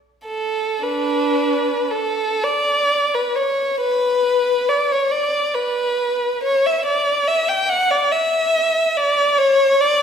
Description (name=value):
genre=classical, free, expressive piece for unaccompanied violin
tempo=30-48 BPM (dotted quarters)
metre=6/8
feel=rubato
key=unclear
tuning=A4 = 436 Hz
part: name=clear violin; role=solo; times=0.3-10.0 s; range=D4 to G5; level=-16 LUFS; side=equal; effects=none
room=moderate scoring stage reverb, RT60 1.7 s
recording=heard from further back in the room, faint mains hum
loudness=-16 LUFS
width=side -7 dB against mid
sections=0.8-10.0 A section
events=none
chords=none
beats=| 0.84 2.44 | 3.82 5.12 | 6.43 7.68 | 8.96